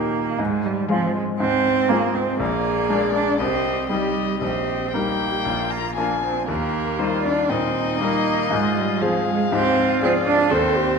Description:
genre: quick classical-period movement for piano quartet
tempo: 119 BPM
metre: 4/4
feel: rubato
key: unclear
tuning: A4 = 440 Hz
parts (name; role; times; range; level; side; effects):
- rich violin; melody; 0.0-11.0 s; Bb4 to Bb5; -26 LUFS; left 10 dB; none
- rich cello; second line; 0.0-11.0 s; F3 to D4; -22 LUFS; right 5 dB; none
- bright concert grand piano; accompaniment; 0.0-11.0 s; Bb1 to Bb4; -24 LUFS; left 3 dB; none
- rich viola; accompaniment; 0.0-11.0 s; Eb4 to A4; -28 LUFS; right 2 dB; none
room: moderate recital hall reverb, RT60 1.7 s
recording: lossy compression artefacts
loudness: -19 LUFS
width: side -5 dB against mid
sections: 0.0-11.0 A section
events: none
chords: 0.4 Fm/Ab; 2.4 Bb7; 3.4 Cm; 4.4 Eb/Bb; 5.5 Bb; 6.5 Eb; 8.5 Fm/Ab

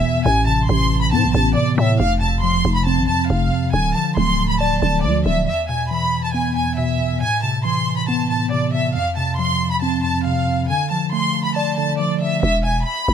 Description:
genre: hip hop, drill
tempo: 138 BPM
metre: 4/4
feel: half-time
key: A harmonic minor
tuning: A4 = 440 Hz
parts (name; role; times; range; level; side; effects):
- warm studio violin section; melody; 0.0-13.1 s; D5 to C6; -21 LUFS; equal; ping-pong delay
- mellow tine electric piano; accompaniment; 0.0-12.5 s; E2 to D5; -20 LUFS; equal; medium stereo tremolo
- growling 808-style bass; bass; 0.0-5.5, 12.4-13.1 s; D1 to A2; -20 LUFS; equal; none
room: small room ambience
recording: none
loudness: -16 LUFS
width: side -8 dB against mid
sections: 0.0-5.5 A section; 5.5-12.4 B section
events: none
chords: 0.3 Amadd9; 2.0 F; 3.7 Dm; 5.5 E5; 7.2 Amadd9; 9.0 F5; 10.7 Dm; 12.4 E

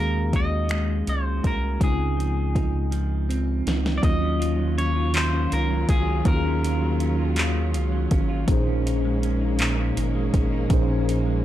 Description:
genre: slow six-eight R&B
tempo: 54 BPM (dotted quarters)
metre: 6/8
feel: straight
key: Eb dorian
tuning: A4 = 440 Hz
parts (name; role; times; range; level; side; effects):
- electric guitar at the edge of break-up; melody; 0.0-7.3 s; Ab4 to Eb5; -30 LUFS; left 1 dB; analog delay
- electric guitar at the edge of break-up; second line; 0.0-11.4 s; Bb2 to Ab4; -29 LUFS; right 3 dB; analog delay
- mellow tine electric piano; accompaniment; 0.0-11.4 s; Bb2 to F5; -28 LUFS; equal; slow stereo tremolo
- rubbery square bass; bass; 0.0-11.4 s; Ab1 to Eb2; -25 LUFS; equal; none
- smooth R&B drum kit; drums; 0.3-11.3 s; finger snaps, handclaps, hi-hat, kick drum, snare drum; -24 LUFS; equal; none
- warm studio string section; sustained chords; 4.0-11.4 s; Eb3 to F4; -34 LUFS; left 2 dB; none
room: little or no reverb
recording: dry, gritty hardware recording, transformer saturation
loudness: -20 LUFS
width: side -12 dB against mid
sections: 0.0-4.0 A section; 4.0-11.4 B section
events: drum fill 2.9-4.0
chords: 0.0 Ebm11; 1.8 Dbmaj9; 4.0 Ebm9; 8.5 Bbm11

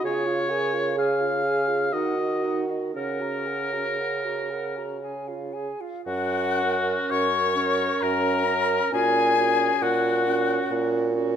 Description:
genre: classical, slow romantic movement for wind quintet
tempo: 55-69 BPM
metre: 3/4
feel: rubato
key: F# major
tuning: A4 = 440 Hz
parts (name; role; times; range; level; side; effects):
- silver concert flute; melody; 0.0-11.1 s; D#5 to C#6; -28 LUFS; left 6 dB; none
- clear oboe; second line; 0.0-11.1 s; F#4 to E#5; -28 LUFS; left 3 dB; none
- warm French horn; accompaniment; 0.0-11.4 s; C#4 to A#4; -31 LUFS; right 1 dB; none
- warm clarinet; accompaniment; 0.0-11.4 s; D#4 to A#4; -32 LUFS; right 9 dB; none
- mellow bassoon; bass; 0.0-11.4 s; F#2 to D#3; -27 LUFS; right 3 dB; none
room: moderate recital hall reverb, RT60 1.5 s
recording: none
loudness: -22 LUFS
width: side -8 dB against mid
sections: 0.0-6.1 A section; 6.1-11.4 B section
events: none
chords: 0.0 C#; 1.9 D#m; 3.0 F#/C#; 5.0 C#; 6.1 F#; 8.9 F#/A#

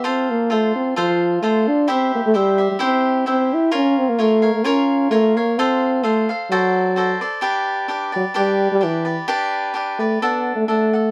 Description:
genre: mexican folk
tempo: 130 BPM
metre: 2/4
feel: straight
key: F major, G major from 7.4 s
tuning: A4 = 439 Hz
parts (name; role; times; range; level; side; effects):
- dark French horn; melody; 0.0-11.1 s; E3 to E4; -19 LUFS; equal; none
- cavaquinho; accompaniment; 0.0-11.1 s; D4 to F#5; -24 LUFS; equal; none
room: moderate booth ambience, RT60 0.3 s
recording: none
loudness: -19 LUFS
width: mono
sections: 0.0-7.4 A section; 7.4-11.1 B section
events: none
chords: 0.0 F; 1.9 C; 3.7 Bbm; 5.6 F; 6.5 D7; 7.4 G; 10.2 D

